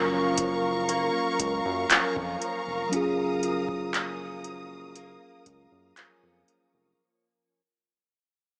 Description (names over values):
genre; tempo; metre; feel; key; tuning
contemporary R&B; 59 BPM; 4/4; straight; F# major; A4 = 440 Hz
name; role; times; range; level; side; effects
mellow tine electric piano; accompaniment; 0.0-7.0 s; F#3 to A#4; -33 LUFS; equal; none
warm studio string section; sustained chords; 0.0-7.0 s; A#4 to D#6; -33 LUFS; equal; none
direct-recorded clean electric guitar; arpeggios; 0.0-7.6 s; F#2 to C#4; -38 LUFS; equal; ensemble chorus, slapback echo
round analog bass; bass; 0.0-6.9 s; E#1 to F#2; -42 LUFS; equal; none
booming analog drum machine; drums; 0.4-6.7 s; handclaps, hi-hat, kick drum; -28 LUFS; equal; overdrive
room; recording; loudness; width
moderate echo chamber reverb, RT60 2.2 s; small speaker sound; -27 LUFS; mono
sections
0.0-7.0 A section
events
fade-out 0.0-7.0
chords
0.0 F#maj7